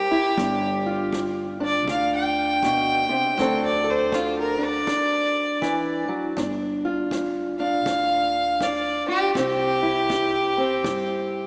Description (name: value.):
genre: acoustic country blues, solo or duo.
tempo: 80 BPM.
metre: 4/4.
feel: swing 62% on 8ths.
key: unclear.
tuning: A4 = 440 Hz.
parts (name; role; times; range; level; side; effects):
clear fiddle; melody; 0.0-11.5 s; F4 to G5; -22 LUFS; equal; none.
fingerpicked steel-string acoustic guitar; accompaniment; 0.0-11.5 s; G2 to A4; -25 LUFS; equal; none.
upright bass; bass; 0.0-11.5 s; G1 to G2; -33 LUFS; equal; none.
kick drum; drums; 0.4-11.1 s; none; -36 LUFS; equal; none.
room: wet lush hall reverb, RT60 3.0 s.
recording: dreamy mix soaked in reverb, small speaker sound.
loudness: -20 LUFS.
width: side -39 dB against mid.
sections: 0.0-6.4 A section; 6.4-11.5 A section.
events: none.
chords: 0.4 G7; 3.4 D7; 6.4 G5; 9.3 C.